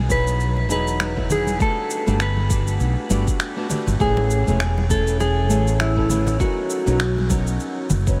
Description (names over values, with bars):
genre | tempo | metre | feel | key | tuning
sunset chillout | 100 BPM | 4/4 | swing 57% on 16ths | E major | A4 = 437 Hz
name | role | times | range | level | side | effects
mellow fretless electric bass | bass | 0.0-8.2 s | E1 to B1 | -23 LUFS | equal | tube saturation
mellow electric guitar | melody | 0.1-8.2 s | E4 to B4 | -27 LUFS | equal | phaser, diffuse ambient delay
flamenco guitar | accompaniment | 0.1-8.2 s | F#3 to G#5 | -29 LUFS | equal | diffuse ambient delay
electronic kick drum | drums | 0.1-8.2 s | none | -25 LUFS | equal | studio ambience
electronic shaker and finger snaps | drums | 0.1-8.2 s | none | -32 LUFS | equal | studio ambience
congas | percussion | 0.6-8.0 s | none | -31 LUFS | equal | none
room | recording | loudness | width
moderate huge ambient reverb, RT60 8.3 s | dreamy mix soaked in reverb | -21 LUFS | mono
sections
0.0-8.2 A section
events
none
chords
0.0 Emaj9; 1.6 Gmaj9; 4.0 Amaj9; 6.4 Bmaj9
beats
0.40 1.00 | 1.60 2.20 2.80 3.40 | 4.00 4.60 5.20 5.80 | 6.40 7.00 7.60